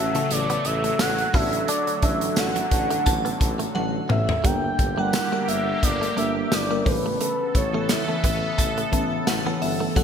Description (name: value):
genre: 1980s-style pop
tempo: 87 BPM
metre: 4/4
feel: swing 55% on 16ths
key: unclear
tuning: A4 = 440 Hz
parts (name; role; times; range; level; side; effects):
- expressive synth lead; melody; 0.0-9.3 s; B4 to G5; -26 LUFS; equal; chorus, ping-pong delay
- FM electric piano with soft pad layer; accompaniment; 0.0-10.0 s; C#3 to Bb4; -28 LUFS; equal; chorus, phaser
- sweeping resonant pad; sustained chords; 0.0-10.0 s; C#3 to A4; -31 LUFS; equal; chorus
- mellow tuba; bass; 0.0-10.0 s; G1 to A1; -30 LUFS; equal; none
- modern studio drum kit; drums; 0.1-10.0 s; hi-hat, kick drum, snare drum, tambourine, toms; -25 LUFS; equal; gated reverb
- direct-recorded clean electric guitar; riff; 0.2-10.0 s; F#3 to D4; -34 LUFS; right 3 dB; none
- glassy synth bell; second line; 3.1-4.4, 8.6-10.0 s; E5 to A5; -32 LUFS; left 2 dB; chorus, ping-pong delay
room: moderate lush hall reverb, RT60 2.2 s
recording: bright 1980s-style digital production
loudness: -20 LUFS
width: side -7 dB against mid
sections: 0.0-4.4 A section; 4.4-10.0 B section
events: drum fill 3.8-4.4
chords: 0.0 F#m/A; 1.3 D/A; 4.4 Gm; 6.9 Aadd9